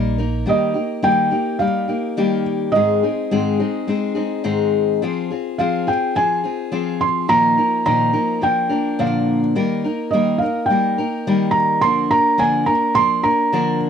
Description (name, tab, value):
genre	folk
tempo	106 BPM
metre	4/4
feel	straight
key	Eb major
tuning	A4 = 440 Hz
part	picked steel-string acoustic guitar	accompaniment	0.0-13.9 s	Ab2 to Bb4	-19 LUFS	left 3 dB	none
part	felt-muted upright piano	melody	0.5-13.8 s	Eb5 to C6	-18 LUFS	right 2 dB	none
room	little or no reverb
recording	dry, close 1970s-style studio recording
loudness	-16 LUFS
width	side -8 dB against mid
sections	0.5-13.9 A section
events	none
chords	0.5 Eb; 2.7 Ab; 5.0 Fm; 7.3 Bbsus4; 8.4 Bb; 9.6 Eb; 11.8 Bb/D